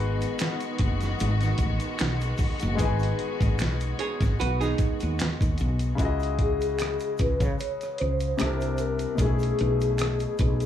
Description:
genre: R&B, neo-soul.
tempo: 75 BPM.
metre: 4/4.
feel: swing 54% on 16ths.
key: C# minor.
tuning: A4 = 439 Hz.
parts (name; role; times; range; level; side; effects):
clear baby grand piano; accompaniment; 0.0-10.7 s; B2 to G#5; -33 LUFS; left 6 dB; none.
warm studio string section; sustained chords; 0.0-5.9 s; D#3 to F#4; -33 LUFS; left 1 dB; none.
woody fretless electric bass; bass; 0.0-10.7 s; F#1 to C#3; -26 LUFS; equal; analog chorus.
dusty soul sampler-style drum kit; drums; 0.2-10.7 s; hi-hat, kick drum, rim click, snare drum; -28 LUFS; equal; none.
egg shaker and finger snaps; percussion; 0.2-10.7 s; none; -42 LUFS; right 5 dB; none.
archtop guitar, miked and amplified; second line; 4.0-5.8 s; D#4 to C#5; -31 LUFS; right 8 dB; tape echo.
vibraphone with soft mallets; melody; 6.4-10.7 s; G#4 to C#5; -29 LUFS; left 2 dB; none.
room: light reverb.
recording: small room reverb.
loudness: -23 LUFS.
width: side -10 dB against mid.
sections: 0.0-6.0 A section; 6.0-10.7 B section.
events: vibraphone solo 6.0-10.7.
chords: 0.0 G#m7; 6.0 C#madd9; 8.4 C9; 9.2 B13sus4.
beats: 0.39 1.19 1.99 | 2.79 3.58 4.38 5.18 | 5.99 6.79 7.58 8.38 | 9.19 9.98.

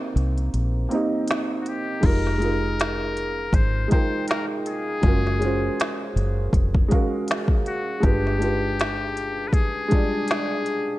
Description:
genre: lo-fi hip hop.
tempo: 80 BPM.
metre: 4/4.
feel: swing 59% on 16ths.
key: F minor.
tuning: A4 = 441 Hz.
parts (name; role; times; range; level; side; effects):
felt-muted upright piano; accompaniment; 0.0-11.0 s; G3 to G5; -26 LUFS; right 1 dB; low-pass filter.
deep dub fingered electric bass; bass; 0.2-9.9 s; F1 to C2; -24 LUFS; equal; none.
organic electronic drum kit; drums; 0.2-10.9 s; crash cymbal, finger snaps, hi-hat, kick drum, snare drum; -22 LUFS; equal; overdrive, vintage 12-bit sampler grit.
trumpet with metal mute; melody; 1.6-11.0 s; Gb4 to C5; -29 LUFS; left 3 dB; low-pass filter, analog delay.
room: digital ambience.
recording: none.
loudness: -20 LUFS.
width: side -17 dB against mid.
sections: 0.0-2.0 A section; 2.0-11.0 B section.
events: kick muted 0.5-2.0.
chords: 0.0 Cm7; 2.0 Fm11; 5.0 Gbmaj9; 8.0 G7b9.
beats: 0.53 1.28 | 2.03 2.78 3.53 4.28 | 5.03 5.78 6.53 7.28 | 8.03 8.78 9.53 10.28.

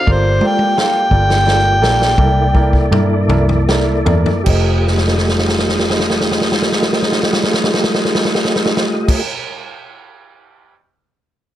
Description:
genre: slow blues.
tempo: 50-59 BPM (dotted quarters).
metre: 12/8.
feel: straight.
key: F mixolydian.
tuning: A4 = 440 Hz.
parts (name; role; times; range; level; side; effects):
overdriven harmonica; melody; 0.0-2.9 s; C5 to G5; -16 LUFS; equal; tape echo.
tonewheel organ; sustained chords; 0.0-9.2 s; A3 to Eb5; -19 LUFS; left 1 dB; slow rotary speaker, chorus vibrato.
warm upright piano; accompaniment; 0.1-9.2 s; E4 to F5; -23 LUFS; right 5 dB; none.
vintage muted fingered electric bass; bass; 0.1-9.2 s; F1 to G2; -16 LUFS; equal; none.
vintage drum kit; drums; 0.1-10.7 s; crash cymbal, kick drum, snare drum, toms; -17 LUFS; equal; none.
room: light reverb.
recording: none.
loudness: -12 LUFS.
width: side -12 dB against mid.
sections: 0.0-4.5 A section; 4.5-9.3 B section.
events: slowing down 0.0-4.5; harmonica solo 0.0-4.5; drum fill 0.1-4.5, 4.9-9.1.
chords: 0.1 Gm7; 2.2 C13; 4.5 F9.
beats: | 0.08 1.11 2.18 3.29 | 4.46 5.67 6.88 8.08.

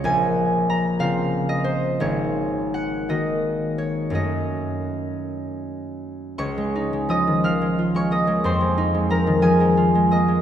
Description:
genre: classical, solo harp piece.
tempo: 48-64 BPM (dotted quarters).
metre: 6/8.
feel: rubato.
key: Db major.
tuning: A4 = 440 Hz.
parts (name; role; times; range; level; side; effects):
concert harp; solo; 0.0-10.4 s; Ab1 to F6; -19 LUFS; equal; none.
room: wet church reverb, RT60 3.3 s.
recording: recorded in a church or concert hall.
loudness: -19 LUFS.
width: side -10 dB against mid.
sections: 0.0-6.4 A section; 6.4-10.4 B section.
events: none.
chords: 0.1 Bbmadd9; 2.0 Ab9sus4; 4.1 Gbm6; 6.4 Dbadd9; 8.4 Fm7.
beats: | 0.06 1.01 | 2.00 3.08 | 4.14 5.19 | 6.38 7.43 | 8.44 9.43.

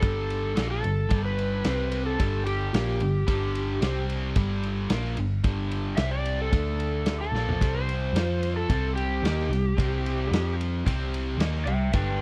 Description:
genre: blues rock power trio and southern rock.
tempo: 111 BPM.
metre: 4/4.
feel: straight.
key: unclear.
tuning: A4 = 440 Hz.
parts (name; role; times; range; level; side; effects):
overdriven slide guitar; melody; 0.0-12.2 s; G4 to G5; -33 LUFS; equal; none.
overdriven electric guitar; riff; 0.0-12.2 s; G2 to F4; -33 LUFS; equal; none.
hollow-body short-scale picked electric bass; bass; 0.0-12.2 s; G1 to F2; -31 LUFS; equal; none.
raw garage drum kit; drums; 0.0-12.1 s; kick drum, ride cymbal, snare drum, toms; -32 LUFS; equal; none.
room: little or no reverb.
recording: dry, close 1970s-style studio recording.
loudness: -26 LUFS.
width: mono.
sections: 0.0-12.2 A section.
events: electric slide guitar solo 0.0-12.2; drum fill 7.3.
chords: 0.0 G5; 1.7 C5; 2.2 G5; 3.8 C5; 4.4 G5; 6.0 C5; 6.5 D5; 7.3 Fadd11/Bb; 7.6 C5; 8.2 F5; 8.7 C5; 10.3 F5; 10.9 C7.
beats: 0.03 0.57 | 1.11 1.65 2.20 2.74 | 3.28 3.82 4.37 4.91 | 5.45 5.99 6.53 7.08 | 7.62 8.16 8.70 9.24 | 9.78 10.32 10.86 11.40 | 11.94.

